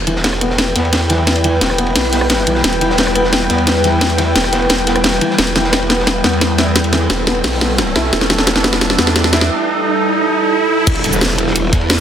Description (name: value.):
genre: dark technical drum and bass.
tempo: 175 BPM.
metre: 4/4.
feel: straight.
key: E minor.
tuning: A4 = 440 Hz.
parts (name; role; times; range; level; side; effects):
deep dark ambient pad; sustained chords; 0.0-12.0 s; G3 to B4; -20 LUFS; right 1 dB; chorus, built-in reverb, sidechain pumping.
growl bass; bass; 0.0-12.0 s; E1 to E2; -18 LUFS; equal; chorus, sidechain pumping.
riser and impact; sound effects; 0.0-12.0 s; none; -22 LUFS; equal; none.
airy breathy pad; texture; 0.0-9.5 s; E4 to G5; -20 LUFS; equal; chorus, sidechain pumping.
felt-muted upright piano; arpeggios; 0.1-9.4 s; E3 to E4; -22 LUFS; left 2 dB; sidechain pumping, low-pass filter, dub echo.
crunchy breakbeat drum kit; drums; 0.1-12.0 s; hi-hat, ride cymbal, snare drum; -24 LUFS; equal; high-pass filter on cymbals, high-pass filter on hats, high-pass filter on snare, high-pass filter on room.
drum and bass drum kit; drums; 0.1-12.0 s; crash cymbal, hi-hat, rim click, shaker, snare drum; -15 LUFS; equal; none.
electronic kick drum; drums; 10.9-11.8 s; none; -15 LUFS; equal; none.
room: moderate digital room reverb, RT60 1.0 s, small room ambience.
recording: dense, heavily limited modern master.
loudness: -12 LUFS.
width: side -9 dB against mid.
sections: 0.0-10.9 A section; 10.9-12.0 B section.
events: build-up 0.0-10.9; drum fill 0.0-9.5; riser 0.0-10.9; filter sweep on ambient pad 0.0-10.9; filter sweep on felt piano 0.0-10.9; drop 10.9-12.0; impact 10.9-12.0.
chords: 0.0 Em.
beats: 0.24 0.58 0.93 | 1.27 1.61 1.96 2.30 | 2.64 2.98 3.33 3.67 | 4.01 4.36 4.70 5.04 | 5.38 5.73 6.07 6.41 | 6.76 7.10 7.44 7.79 | 8.13 8.47 8.81 9.16 | 9.50 9.84 10.19 10.53 | 10.87 11.21 11.56 11.90.